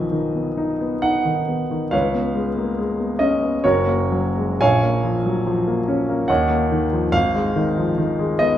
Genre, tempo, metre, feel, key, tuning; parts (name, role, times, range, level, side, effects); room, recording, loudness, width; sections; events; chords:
classical, romantic character piece for solo piano; 58-73 BPM; 3/4; rubato; A4 = 441 Hz
warm grand piano; solo; 0.0-8.6 s; F#1 to G#5; -18 LUFS; equal
wet recital hall reverb, RT60 1.5 s; minimal, uncompressed stereo recording; -18 LUFS; side -11 dB against mid
0.0-8.6 A section
0.0 G#m/B; 1.9 C#7; 3.6 F#; 4.6 A#m; 6.3 D#m7; 7.1 G#m